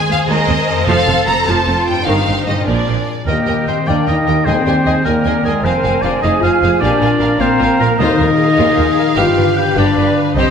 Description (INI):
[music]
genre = cinematic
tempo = 102 BPM (dotted quarters)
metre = 6/8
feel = straight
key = Eb major from 3.3 s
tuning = A4 = 440 Hz
[part]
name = rich symphonic violin section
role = melody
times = 0.0-10.5 s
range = D5 to Bb5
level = -21 LUFS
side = left 1 dB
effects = none
[part]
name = rich symphonic violin section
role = second line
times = 0.0-10.5 s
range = F4 to Eb5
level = -23 LUFS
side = left 2 dB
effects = none
[part]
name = concert harp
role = arpeggios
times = 0.0-10.5 s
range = F2 to C5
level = -22 LUFS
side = left 4 dB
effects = none
[part]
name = rich symphonic cello section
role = bass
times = 0.0-10.4 s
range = Eb2 to Bb4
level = -22 LUFS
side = right 2 dB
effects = none
[part]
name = rich symphonic viola section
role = accompaniment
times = 0.1-10.5 s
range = Eb3 to Eb5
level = -23 LUFS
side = right 1 dB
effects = none
[part]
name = rich studio double bass section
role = bass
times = 0.1-10.4 s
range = F1 to Eb2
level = -20 LUFS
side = right 4 dB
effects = none
[part]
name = clear oboe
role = second line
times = 3.3-10.5 s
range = Ab4 to G5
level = -19 LUFS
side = right 2 dB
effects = none
[part]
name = flute section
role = second line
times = 3.3-10.4 s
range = Eb5 to Bb5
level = -23 LUFS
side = left 1 dB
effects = none
[part]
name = mellow clarinet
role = second line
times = 3.3-10.4 s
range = Bb4-20c to F5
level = -24 LUFS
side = equal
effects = none
[part]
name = warm French horn section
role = sustained chords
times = 3.3-10.5 s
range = Ab3 to G4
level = -16 LUFS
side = left 2 dB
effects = none
[part]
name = timpani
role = percussion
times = 4.5-5.0, 8.0-8.5 s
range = Eb3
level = -24 LUFS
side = equal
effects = none
[sound]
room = wet scoring stage reverb, RT60 1.8 s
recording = none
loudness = -12 LUFS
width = side -7 dB against mid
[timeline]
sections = 0.0-3.3 A section; 3.3-10.5 B section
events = none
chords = 0.0 Ab/Eb; 0.9 F; 2.1 Cm/G; 2.7 Bb7; 3.3 Eb; 4.5 Ab/Eb; 5.6 Fm; 6.8 Bb; 8.0 Ebsus2; 9.2 G7